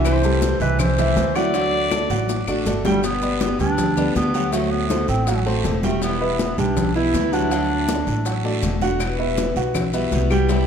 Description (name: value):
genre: latin, Cuban son and guajira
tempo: 161 BPM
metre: 4/4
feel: straight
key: G major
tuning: A4 = 440 Hz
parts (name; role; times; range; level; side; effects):
- warm clarinet; melody; 0.0-8.4 s; G3 to D5; -24 LUFS; right 1 dB; tape echo
- picked steel-string acoustic guitar; accompaniment; 0.0-10.7 s; B2 to G4; -27 LUFS; left 4 dB; none
- dark baby grand piano; arpeggios; 0.0-10.7 s; E3 to G5; -23 LUFS; right 2 dB; none
- upright bass; bass; 0.0-10.7 s; E1 to D2; -24 LUFS; equal; none
- bongos; percussion; 0.0-10.7 s; none; -32 LUFS; left 7 dB; none
- guiro; percussion; 0.0-10.7 s; none; -35 LUFS; right 8 dB; none
- claves; percussion; 0.1-2.7, 9.0-10.5 s; none; -36 LUFS; left 8 dB; none
- congas; percussion; 0.1-10.7 s; none; -28 LUFS; left 2 dB; none
- maracas; percussion; 0.1-10.7 s; none; -38 LUFS; left 7 dB; none
room: moderate large studio reverb, RT60 1.4 s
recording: none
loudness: -18 LUFS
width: side -7 dB against mid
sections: 0.0-3.0 A section; 3.0-10.7 B section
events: drum fill 2.1-3.0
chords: 0.1 C6; 1.5 D; 3.0 G; 4.5 D7; 6.0 Em; 7.5 D; 9.0 Emadd9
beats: | 0.05 0.42 0.80 1.17 | 1.54 1.92 2.29 2.66 | 3.04 3.41 3.78 4.16 | 4.53 4.90 5.28 5.65 | 6.02 6.39 6.77 7.14 | 7.51 7.89 8.26 8.63 | 9.01 9.38 9.75 10.12 | 10.49